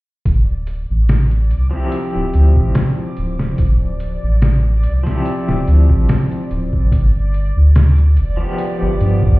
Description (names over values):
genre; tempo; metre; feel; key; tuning
trip hop; 72 BPM; 4/4; swing 54% on 16ths; D dorian; A4 = 440 Hz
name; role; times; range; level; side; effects
round analog bass; bass; 0.3-9.4 s; D1 to G2; -14 LUFS; equal; none
trip hop sampler-style drum kit; drums; 0.3-9.4 s; hi-hat, kick drum, snare drum; -15 LUFS; equal; studio reverb
backwards swelling texture; texture; 1.3-9.4 s; D5; -34 LUFS; left 1 dB; built-in reverb
electric guitar at the edge of break-up; accompaniment; 1.7-9.4 s; F3 to G4; -22 LUFS; left 1 dB; tremolo, vintage 12-bit sampler grit, low-pass filter, tape echo
room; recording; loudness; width
little or no reverb; heard muffled through a wall, stone room reverb, EQ; -13 LUFS; side -20 dB against mid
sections
0.3-9.4 A section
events
none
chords
0.3 Dm11; 6.9 G7